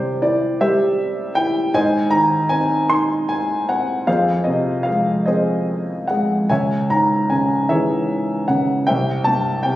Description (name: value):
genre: classical, lyrical solo piano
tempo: 51 BPM (dotted quarters)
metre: 6/8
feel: rubato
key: unclear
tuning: A4 = 440 Hz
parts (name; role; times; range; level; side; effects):
- dark grand piano; solo; 0.0-9.8 s; C2 to C6; -16 LUFS; equal; none
room: moderate recital hall reverb, RT60 1.5 s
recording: recorded on a phone in the room, club reverb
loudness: -16 LUFS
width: side -15 dB against mid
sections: 0.0-9.8 A section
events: none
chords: 0.0 C; 1.7 Ab; 4.1 Fm7; 6.5 Dbm; 8.9 C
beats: 0.60 | 1.74 2.90 | 4.07 5.27 | 6.50 7.70 | 8.87